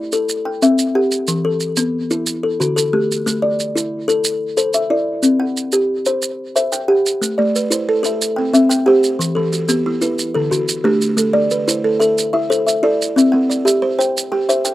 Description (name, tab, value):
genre	southern african traditional, mbira-style interlocking cycle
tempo	121 BPM (dotted quarters)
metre	12/8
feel	straight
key	A dorian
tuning	A4 = 442 Hz
part	kalimba	arpeggios	0.0-14.7 s	D3 to G5	-16 LUFS	left 1 dB	none
part	maracas	percussion	0.1-14.7 s	none	-22 LUFS	right 4 dB	none
part	buzzing kalimba	arpeggios	7.4-14.6 s	D3 to G5	-20 LUFS	right 4 dB	none
room	light reverb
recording	recorded outdoors, with no room sound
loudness	-14 LUFS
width	side -15 dB against mid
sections	0.0-14.7 A section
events	none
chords	0.3 C; 1.3 E5; 2.3 D; 3.3 Am; 5.2 C; 7.2 Am; 8.2 C; 9.2 Em; 10.2 D; 11.2 Am; 13.2 C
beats	0.29 0.79 | 1.28 1.77 2.27 2.77 | 3.26 3.75 4.25 4.74 | 5.24 5.73 6.22 6.72 | 7.21 7.71 8.20 8.70 | 9.19 9.69 10.18 10.68 | 11.17 11.67 12.17 12.66 | 13.16 13.65 14.15 14.64